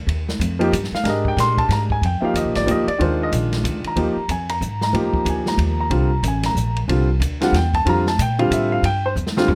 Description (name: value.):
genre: modal jazz.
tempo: 185 BPM.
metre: 3/4.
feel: swing 62% on 8ths.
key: Bb mixolydian.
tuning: A4 = 440 Hz.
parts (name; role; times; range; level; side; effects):
upright bass; bass; 0.0-9.6 s; Ab1 to Bb2; -24 LUFS; equal; none.
open jazz drum kit; drums; 0.1-9.6 s; hi-hat, kick drum, ride cymbal, snare drum, toms; -30 LUFS; equal; none.
warm concert grand piano; accompaniment; 0.6-9.5 s; D3 to C6; -22 LUFS; equal; none.
room: little or no reverb.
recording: close, detailed microphones.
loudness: -20 LUFS.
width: mono.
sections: 0.0-2.0 A section; 2.0-9.6 A section.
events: drum fill 9.2-9.6.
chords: 0.0 Abmaj7sus2; 2.0 Bb7sus4; 5.9 C9sus4.